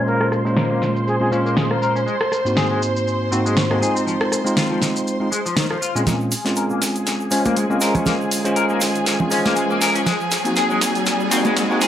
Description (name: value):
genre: nu-disco, nu disco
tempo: 120 BPM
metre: 4/4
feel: swing 56% on 16ths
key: Bb minor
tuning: A4 = 440 Hz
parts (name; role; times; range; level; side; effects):
- breathy jazz flute; melody; 0.0-1.3 s; Ab4 to Bb4; -26 LUFS; equal; tape echo
- bell-like tine electric piano; accompaniment; 0.0-11.9 s; Ab2 to C5; -21 LUFS; right 1 dB; analog delay
- clear studio violin section; sustained chords; 0.0-11.9 s; Ab4 to C6; -25 LUFS; left 1 dB; low-pass filter
- electric guitar at the edge of break-up; riff; 0.1-11.9 s; Eb3 to Bb4; -25 LUFS; left 4 dB; lush chorus, low-pass filter, analog delay
- pop drum kit; drums; 0.1-11.9 s; hi-hat, rim click, shaker, snare drum; -23 LUFS; equal; high-pass filter on perc, high-pass filter on snare, high-pass filter on hats, high-pass filter on room
- congas and egg shaker; percussion; 6.1-11.9 s; none; -25 LUFS; right 2 dB; none
- riser; sound effects; 7.6-11.9 s; none; -28 LUFS; equal; none
room: moderate digital room reverb, RT60 1.2 s, digital ambience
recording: high-pass filter, low-pass filter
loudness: -17 LUFS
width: side -10 dB against mid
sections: 0.0-6.1 A section; 6.1-11.9 B section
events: filter sweep 0.0-6.1; build-up 6.1-11.9; drum fill 6.1-11.9; filter sweep on clean electric guitar 6.1-11.9; filter sweep on violin section 6.1-11.9; riser 7.6-11.9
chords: 0.0 Bbm7; 2.1 Ab7; 4.1 Fm7; 6.1 Bbm7; 10.1 Ab7